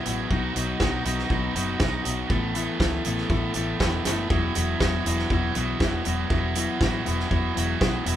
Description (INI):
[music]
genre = indie rock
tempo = 120 BPM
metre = 4/4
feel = straight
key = unclear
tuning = A4 = 444 Hz
[part]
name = mellow electric guitar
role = riff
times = 0.0-8.2 s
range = E3 to E4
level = -30 LUFS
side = left 7 dB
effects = none
[part]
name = overdriven semi-hollow guitar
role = riff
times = 0.0-8.2 s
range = E2 to A4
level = -28 LUFS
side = right 4 dB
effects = none
[part]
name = overdriven picked electric bass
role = bass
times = 0.1-8.2 s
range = E1 to C#2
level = -29 LUFS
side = equal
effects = none
[part]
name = loose indie drum kit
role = drums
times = 0.1-8.2 s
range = hi-hat, kick drum, snare drum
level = -26 LUFS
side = right 1 dB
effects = none
[sound]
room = moderate studio reverb, RT60 0.6 s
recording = band playing live in one room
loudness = -22 LUFS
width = side -11 dB against mid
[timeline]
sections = 0.0-8.2 A section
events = none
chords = 0.3 B; 2.3 Asus2; 4.3 Esus2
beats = | 0.30 0.81 1.30 1.80 | 2.30 2.80 3.30 3.80 | 4.30 4.80 5.30 5.80 | 6.30 6.80 7.30 7.80